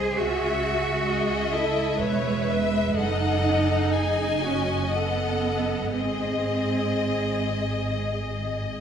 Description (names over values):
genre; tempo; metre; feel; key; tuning
classical, slow romantic movement for string orchestra; 57-66 BPM; 3/4; rubato; C# minor; A4 = 440 Hz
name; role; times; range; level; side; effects
rich studio violin section; melody; 0.0-8.8 s; D#5 to G#5; -32 LUFS; left 5 dB; none
rich studio violin section; second line; 0.0-8.8 s; B#4 to E5; -29 LUFS; left 5 dB; none
rich studio viola section; accompaniment; 0.0-8.8 s; F#4 to B4; -31 LUFS; right 2 dB; none
clear studio cello section; bass; 0.0-8.0 s; G#3 to G#4; -28 LUFS; right 2 dB; none
warm studio double bass section; bass; 0.0-8.8 s; E1 to C#2; -28 LUFS; right 2 dB; none
room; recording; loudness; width
wet concert hall reverb, RT60 2.4 s; recorded in a church or concert hall; -22 LUFS; side -8 dB against mid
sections
0.0-8.8 A section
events
none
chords
0.2 C#m; 3.0 D#dim/F#; 5.9 G#